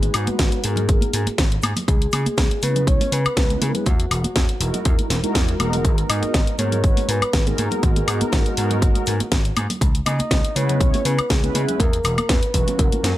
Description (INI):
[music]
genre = nu-disco, nu disco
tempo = 121 BPM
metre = 4/4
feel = swing 53% on 16ths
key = G# minor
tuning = A4 = 436 Hz
[part]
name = soft octave-layered synth lead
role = melody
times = 0.0-13.2 s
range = F#4 to D#5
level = -27 LUFS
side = equal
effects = chorus, tape echo
[part]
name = mellow synth brass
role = accompaniment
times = 0.0-13.0 s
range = E3 to C#5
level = -26 LUFS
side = equal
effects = chorus, sidechain pumping, slapback echo
[part]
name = vintage slap bass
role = bass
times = 0.0-13.1 s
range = E1 to C#3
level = -23 LUFS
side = equal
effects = none
[part]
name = house drum kit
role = drums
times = 0.0-13.1 s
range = hi-hat, snare drum, woodblock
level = -24 LUFS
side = left 2 dB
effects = none
[part]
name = congas and egg shaker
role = percussion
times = 0.0-13.1 s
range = none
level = -30 LUFS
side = right 1 dB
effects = none
[part]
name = electronic kick drum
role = drums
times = 0.4-12.9 s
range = none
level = -19 LUFS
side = equal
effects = none
[sound]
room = little or no reverb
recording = none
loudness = -17 LUFS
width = side -14 dB against mid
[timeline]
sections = 0.0-13.2 A section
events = none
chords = 0.0 G#m9; 1.9 C#m7; 3.9 Emaj9#11; 5.8 G#m9; 9.8 C#m7; 11.8 Esus2